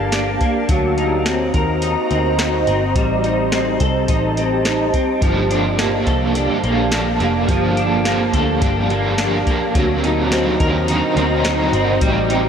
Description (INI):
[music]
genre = dream pop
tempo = 106 BPM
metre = 4/4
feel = straight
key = G minor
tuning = A4 = 440 Hz
[part]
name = ethereal airy pad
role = sustained chords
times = 0.0-12.5 s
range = Bb3 to Bb5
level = -21 LUFS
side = right 1 dB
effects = ensemble chorus, built-in reverb
[part]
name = clean electric guitar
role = arpeggios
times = 0.0-12.5 s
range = F3 to Bb4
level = -20 LUFS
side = left 1 dB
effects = ensemble chorus, ping-pong delay
[part]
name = vintage muted picked electric bass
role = bass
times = 0.0-12.5 s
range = F1 to Eb2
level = -22 LUFS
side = equal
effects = none
[part]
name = soft vintage rhythm box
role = drums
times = 0.1-12.4 s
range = hi-hat, kick drum, snare drum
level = -22 LUFS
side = equal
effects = none
[part]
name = crunchy overdriven guitar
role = accompaniment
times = 5.2-12.5 s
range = G2 to Bb4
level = -22 LUFS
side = right 4 dB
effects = tremolo, ensemble chorus
[sound]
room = moderate huge ambient reverb, RT60 3.7 s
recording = none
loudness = -15 LUFS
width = side -7 dB against mid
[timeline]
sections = 0.0-12.5 A section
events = none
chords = 0.0 Gm9; 0.7 D7b9b13; 3.0 Am7b5; 5.2 Gm9; 9.8 D7b9b13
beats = 0.13 | 0.69 1.26 1.83 2.39 | 2.96 3.52 4.09 4.66 | 5.22 5.79 6.35 6.92 | 7.49 8.05 8.62 9.18 | 9.75 10.32 10.88 11.45 | 12.01